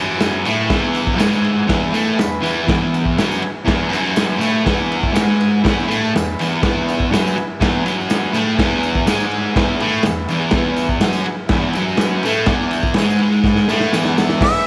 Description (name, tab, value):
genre	garage rock duo or trio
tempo	122 BPM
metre	4/4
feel	straight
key	E major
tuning	A4 = 441 Hz
part	overdriven combo organ	sustained chords	0.0-14.7 s	E4 to B5	-30 LUFS	equal	lush chorus
part	crunchy overdriven guitar	riff	0.0-14.4 s	E2 to A3	-19 LUFS	equal	none
part	tambourine	percussion	0.1-14.4 s	none	-40 LUFS	equal	none
part	raw garage drum kit	drums	0.2-14.5 s	crash cymbal, kick drum, ride cymbal, snare drum	-22 LUFS	equal	none
part	clear harmonica	melody	14.4-14.7 s	E5	-18 LUFS	equal	overdrive
room	wet echo chamber reverb, RT60 1.4 s, small room ambience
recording	none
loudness	-17 LUFS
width	mono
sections	0.0-14.4 A section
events	transistor combo organ fill 1.2-2.7, 13.7-14.4; drum fill 13.5-14.4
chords	0.0 E